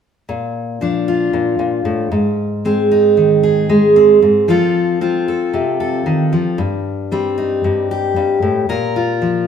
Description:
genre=folk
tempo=114 BPM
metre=4/4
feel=straight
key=Bb major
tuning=A4 = 439 Hz
part: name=fingerpicked steel-string acoustic guitar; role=solo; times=0.3-9.5 s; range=G2 to Bb4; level=-13 LUFS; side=equal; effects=none
room=wet stone room reverb, RT60 1.3 s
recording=band playing live in one room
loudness=-13 LUFS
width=side -7 dB against mid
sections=0.3-8.7 A section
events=none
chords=0.3 Bb; 2.1 Ab; 4.5 F; 6.6 Eb6/G; 8.7 Bb5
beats=| 0.29 0.81 1.34 1.86 | 2.39 2.91 3.44 3.96 | 4.48 5.01 5.53 6.06 | 6.58 7.11 7.63 8.16 | 8.68 9.21

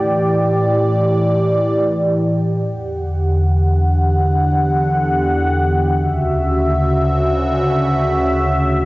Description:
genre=hip hop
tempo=free time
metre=none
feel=none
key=E dorian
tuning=A4 = 440 Hz
part: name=sweeping resonant pad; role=solo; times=0.0-8.9 s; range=D2 to F#5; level=-14 LUFS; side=equal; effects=chorus, cassette tape
room=moderate lush hall reverb, RT60 2.6 s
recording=home recording on cassette, nothing above 7.7 kHz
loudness=-14 LUFS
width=side -20 dB against mid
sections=0.0-8.9 A section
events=none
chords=0.0 A7sus4; 2.7 Em9; 6.0 Dmaj9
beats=free time

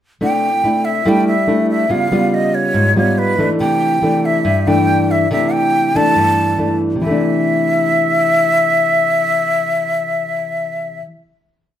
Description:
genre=bossa nova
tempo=142 BPM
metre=4/4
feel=straight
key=C major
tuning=A4 = 440 Hz
part: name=breathy jazz flute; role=melody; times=0.2-11.0 s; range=Cb5 to A5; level=-16 LUFS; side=equal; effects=none
part: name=nylon-string guitar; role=accompaniment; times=0.2-11.1 s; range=G2 to F4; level=-16 LUFS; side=equal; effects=none
room=moderate large studio reverb, RT60 0.9 s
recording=minimal, uncompressed stereo recording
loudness=-13 LUFS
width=side -10 dB against mid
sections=0.2-7.0 A section; 7.0-10.4 final chord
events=none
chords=0.2 C69; 1.9 Db7#11; 3.6 C69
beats=| 0.21 0.63 1.06 1.48 | 1.91 2.33 2.75 3.18 | 3.60 4.03 4.45 4.88 | 5.30 5.72 6.15 6.57 | 6.99 7.42 7.84 8.26 | 8.69 9.11 9.53 9.96

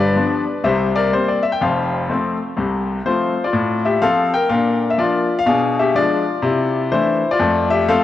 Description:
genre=jazz, stride piano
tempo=124 BPM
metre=4/4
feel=swing 64% on 8ths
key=F major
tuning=A4 = 441 Hz
part: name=bright concert grand piano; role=solo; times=0.0-8.0 s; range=F1 to G5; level=-15 LUFS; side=left 2 dB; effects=none
room=moderate lush hall reverb, RT60 2.2 s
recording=home recording on cassette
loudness=-16 LUFS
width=side -12 dB against mid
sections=0.0-3.5 A section; 3.5-8.0 B section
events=none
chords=0.0 G7; 0.6 C5; 1.6 F; 3.5 F/A; 4.5 Bb; 5.5 Bdim7; 6.4 C69; 7.4 F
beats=0.15 0.63 1.12 | 1.60 2.08 2.57 3.05 | 3.54 4.02 4.50 4.99 | 5.47 5.95 6.44 6.92 | 7.41 7.89

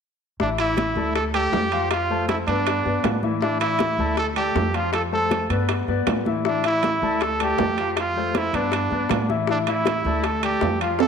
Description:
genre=latin, salsa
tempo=159 BPM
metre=4/4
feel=straight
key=A minor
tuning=A4 = 439 Hz
part: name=bright trumpet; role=melody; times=0.4-11.1 s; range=D4 to A4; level=-24 LUFS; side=right 3 dB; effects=none
part: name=clear baby grand piano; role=accompaniment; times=0.4-11.1 s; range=E3 to F5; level=-26 LUFS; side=left 7 dB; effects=none
part: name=upright bass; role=bass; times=0.4-11.1 s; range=A1 to A2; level=-28 LUFS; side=right 1 dB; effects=none
part: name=bongos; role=percussion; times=0.4-11.1 s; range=none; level=-31 LUFS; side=left 8 dB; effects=none
part: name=congas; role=percussion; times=0.4-11.1 s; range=none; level=-31 LUFS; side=equal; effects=none
part: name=timbales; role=percussion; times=0.6-11.1 s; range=none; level=-28 LUFS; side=right 13 dB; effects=none
room=wet echo chamber reverb, RT60 1.7 s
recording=1960s-style stereo with parts hard left and right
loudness=-20 LUFS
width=side -6 dB against mid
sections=0.4-11.1 A section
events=none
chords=0.4 A5; 1.2 Dm; 1.9 F; 2.7 G; 3.4 A5; 4.2 Dm; 4.9 F; 5.7 G; 6.5 A5; 7.2 Dm; 8.0 F; 8.7 G; 9.5 A5; 10.2 Dm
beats=| 0.40 0.78 1.16 1.54 | 1.91 2.29 2.67 3.05 | 3.43 3.81 4.18 4.56 | 4.94 5.32 5.70 6.08 | 6.45 6.83 7.21 7.59 | 7.97 8.35 8.72 9.10 | 9.48 9.86 10.24 10.62 | 11.00

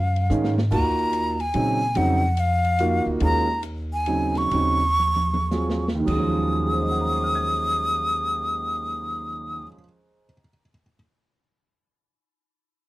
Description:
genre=modal jazz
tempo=101-144 BPM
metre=3/4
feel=swing 65% on 8ths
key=Eb dorian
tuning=A4 = 442 Hz
part: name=breathy jazz flute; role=melody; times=0.0-9.7 s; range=F5 to Eb6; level=-24 LUFS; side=equal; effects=none
part: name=upright bass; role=bass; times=0.0-9.7 s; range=D2 to Bb2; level=-26 LUFS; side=equal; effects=none
part: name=open jazz drum kit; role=drums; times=0.2-6.3 s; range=crash cymbal, hi-hat, kick drum, ride cymbal, snare drum, toms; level=-32 LUFS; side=equal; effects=none
part: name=warm grand piano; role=accompaniment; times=0.3-10.9 s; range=Eb2 to Ab6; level=-25 LUFS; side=right 2 dB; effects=none
room=light reverb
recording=dry, close 1970s-style studio recording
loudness=-20 LUFS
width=side -17 dB against mid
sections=0.7-6.1 A section; 6.1-9.6 B section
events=drum fill 0.3-0.7, 5.0-6.1; slowing down 3.2-6.1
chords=0.0 Bbm7 (rootless); 0.7 Bbm; 6.1 Ebm11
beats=0.29 | 0.71 1.13 1.54 | 1.96 2.38 2.79 | 3.21 3.63 4.06 | 4.51 4.99 5.50 | 6.07 6.66 7.26 | 7.85 8.45 9.04

